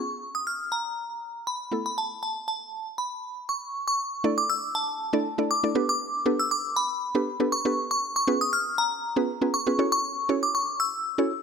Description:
pop; 119 BPM; 4/4; straight; A4 = 440 Hz
glassy synth bell; melody; 0.0-11.4 s; A5 to E#6; -26 LUFS; left 1 dB; chorus
mallet-like synth pluck; accompaniment; 0.0-11.3 s; A3 to D5; -26 LUFS; right 1 dB; chorus
light reverb; -24 LUFS; side -6 dB against mid
0.0-4.0 A section; 4.0-11.4 B section
drop 4.0-11.4
0.0 C#7; 1.7 Asus2; 4.0 Dsus2; 5.8 Gadd9; 8.0 C#7; 9.8 F#m7/C#

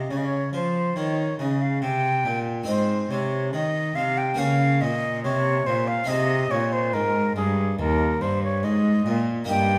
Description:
classical, baroque-style sonata movement with continuo; 70 BPM; 4/4; rubato; Ab major; A4 = 440 Hz
mellow concert flute; melody; 0.0-9.8 s; Ab4 to G5; -28 LUFS; equal
harpsichord; accompaniment; 0.0-9.8 s; Eb2 to Db5; -31 LUFS; equal
warm cello; bass; 0.0-9.8 s; Eb2 to F3; -27 LUFS; equal
wet recital hall reverb, RT60 1.4 s; -24 LUFS; mono
0.0-9.8 A section
0.0 Eb5; 2.7 Ab; 4.4 Bbm; 6.1 Ab

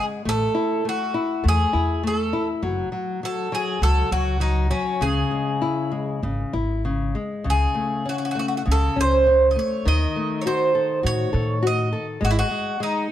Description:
fado-style ballad; 101 BPM; 4/4; rubato; A4 = 441 Hz
Greek bouzouki; melody; 0.0-13.1 s; C#4 to D#5; -23 LUFS; right 2 dB
nylon-string guitar; accompaniment; 0.0-13.1 s; C#3 to A4; -25 LUFS; left 4 dB
upright bass; bass; 0.3-12.4 s; F#1 to A2; -22 LUFS; equal
light reverb; close, detailed microphones; -20 LUFS; side -11 dB against mid
0.0-13.1 A section
0.3 A5; 2.6 F#5; 5.0 C#m; 7.5 F#madd9/C# (rootless); 9.9 D#dim; 12.2 G#5

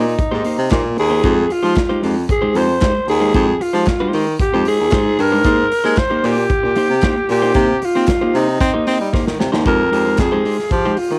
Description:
disco; 114 BPM; 4/4; straight; F minor; A4 = 442 Hz
growling alto saxophone; melody; 0.0-11.2 s; Eb4 to C5; -20 LUFS; equal; cassette tape
clean electric guitar; accompaniment; 0.0-11.2 s; Ab3 to C5; -24 LUFS; equal; cassette tape
clear baritone saxophone; bass; 0.0-11.2 s; Eb2 to C4; -21 LUFS; equal
modern studio drum kit; drums; 0.2-11.1 s; handclaps, hi-hat, kick drum, snare drum; -24 LUFS; equal; cassette tape
light reverb, studio reverb; home recording on cassette; -16 LUFS; mono
0.0-9.7 A section; 9.7-11.2 B section
drum fill 9.1-9.7
0.0 Abmaj9 (rootless); 1.2 Fm9; 5.4 Abmaj9; 7.6 Cm7; 9.7 Fm9

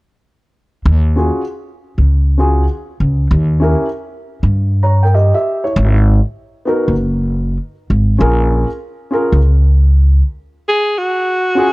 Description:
hip hop, jazz-hop; 98 BPM; 4/4; swing 66% on 16ths; Eb minor; A4 = 440 Hz
upright bass; bass; 0.9-10.2 s; Gb1 to G2; -11 LUFS; equal
dark concert grand piano; accompaniment; 1.2-11.7 s; Cb4 to Bb5; -17 LUFS; equal
breathy alto saxophone; melody; 10.7-11.7 s; Gb4 to Ab4; -13 LUFS; equal
small room ambience; dry, gritty hardware recording, cassette tape; -12 LUFS; side -22 dB against mid
0.9-10.7 A section; 10.7-11.7 B section
break 10.7-11.7
0.9 Ebm11; 3.3 Eb7b9; 5.8 Ab7(no3); 8.2 Bbm7; 10.7 Dbadd11

